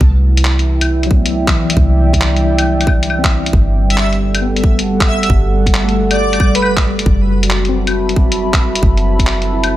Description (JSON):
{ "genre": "future garage", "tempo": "136 BPM", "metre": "4/4", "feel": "swing 67% on 16ths", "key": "unclear", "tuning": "A4 = 440 Hz", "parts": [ { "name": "tine electric piano", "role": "accompaniment", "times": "0.0-9.8 s", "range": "E3 to E4", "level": "-21 LUFS", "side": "left 3 dB", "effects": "overdrive, fast stereo tremolo, sidechain pumping, analog delay" }, { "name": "dark analog pad", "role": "sustained chords", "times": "0.0-9.8 s", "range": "G3 to B5", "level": "-18 LUFS", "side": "right 2 dB", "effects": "chorus, sidechain pumping" }, { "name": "soft 808-style bass", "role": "bass", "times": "0.0-9.8 s", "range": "F#1 to C2", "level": "-16 LUFS", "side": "equal", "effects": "tube saturation" }, { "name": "electronic kick drum", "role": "drums", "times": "0.0-9.3 s", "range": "none", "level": "-13 LUFS", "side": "equal", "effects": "studio ambience" }, { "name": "lo-fi sampler-style drum kit", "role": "drums", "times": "0.4-9.7 s", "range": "claves, handclaps, hi-hat", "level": "-18 LUFS", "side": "left 1 dB", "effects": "studio ambience" }, { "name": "airy dreamy lead", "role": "melody", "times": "3.9-6.7 s", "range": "B4 to E5", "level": "-21 LUFS", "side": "right 2 dB", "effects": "chorus, tape echo" } ], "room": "light reverb", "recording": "none", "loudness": "-11 LUFS", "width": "side -14 dB against mid", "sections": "0.0-9.8 A section", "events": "none", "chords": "0.0 Cmaj7; 3.5 Gmaj9; 7.1 Am13/F#", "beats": "| 0.01 0.45 0.89 1.33 | 1.77 2.21 2.65 3.10 | 3.54 3.98 4.42 4.86 | 5.30 5.74 6.18 6.62 | 7.07 7.51 7.95 8.39 | 8.83 9.27 9.71" }